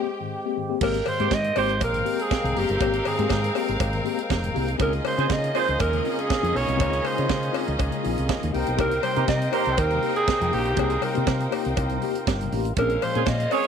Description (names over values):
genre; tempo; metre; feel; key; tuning
disco; 120 BPM; 4/4; straight; Ab major; A4 = 440 Hz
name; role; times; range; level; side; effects
clear studio string section; second line; 0.0-13.7 s; C4 to G5; -31 LUFS; left 2 dB; none
mellow tine electric piano; accompaniment; 0.0-13.7 s; Ab2 to Ab4; -30 LUFS; left 14 dB; medium stereo tremolo
tonewheel organ; sustained chords; 0.0-13.7 s; C3 to G5; -32 LUFS; right 1 dB; slow rotary speaker
growling alto saxophone; melody; 0.8-13.7 s; G4 to Eb5; -26 LUFS; right 2 dB; tape echo
fingered electric bass; bass; 0.8-13.5 s; F1 to Db3; -27 LUFS; equal; none
tight funk drum kit; drums; 0.8-13.7 s; crash cymbal, hi-hat, kick drum, snare drum; -29 LUFS; right 4 dB; none
cowbell; percussion; 0.8-13.6 s; none; -34 LUFS; left 14 dB; none
clear horn section; stabs; 1.2-1.7, 5.2-5.7, 9.2-9.9, 13.2-13.7 s; Db4 to C5; -28 LUFS; right 12 dB; none
room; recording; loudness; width
moderate spring reverb, RT60 1.9 s, small room ambience; 1960s-style stereo with parts hard left and right; -21 LUFS; side -7 dB against mid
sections
0.8-13.7 A section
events
break 0.0-0.8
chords
0.0 Abmaj7; 0.8 Abmaj9; 4.8 Dbmaj9; 8.5 Cm7; 12.8 Bbm9